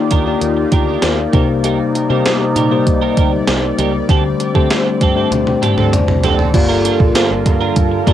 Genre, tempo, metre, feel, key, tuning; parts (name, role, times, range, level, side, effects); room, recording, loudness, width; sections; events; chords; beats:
1980s-style pop; 98 BPM; 4/4; straight; G minor; A4 = 435 Hz
bell-like tine electric piano; accompaniment; 0.0-8.1 s; G2 to A5; -17 LUFS; left 6 dB
phased analog pad; sustained chords; 0.0-8.1 s; C3 to D5; -20 LUFS; equal; phaser, chorus
electric guitar at the edge of break-up; riff; 0.1-8.1 s; C4 to Bb4; -21 LUFS; right 8 dB; analog chorus, tape echo
fingered electric bass; bass; 0.1-8.0 s; F#1 to D3; -22 LUFS; right 1 dB
gated 80s digital drum machine; drums; 0.1-8.1 s; crash cymbal, hi-hat, kick drum, snare drum, tambourine, toms; -15 LUFS; right 1 dB; gated reverb, gated reverb snare, cassette tape
analog synth brass; stabs; 5.8-8.1 s; D3 to A4; -21 LUFS; right 9 dB; chorus, tape echo
moderate booth ambience, RT60 0.2 s; home recording on cassette; -12 LUFS; side -11 dB against mid
0.0-6.5 A section; 6.5-8.1 B section
band accent 4.1-6.5; drum fill 5.3-6.5; tine electric piano fill 5.3-6.5
0.0 Ebmaj7; 1.3 Cm7; 4.1 D7sus4; 6.5 Gm7
0.42 1.03 | 1.64 2.25 2.87 3.48 | 4.09 4.70 5.32 5.93 | 6.54 7.15 7.77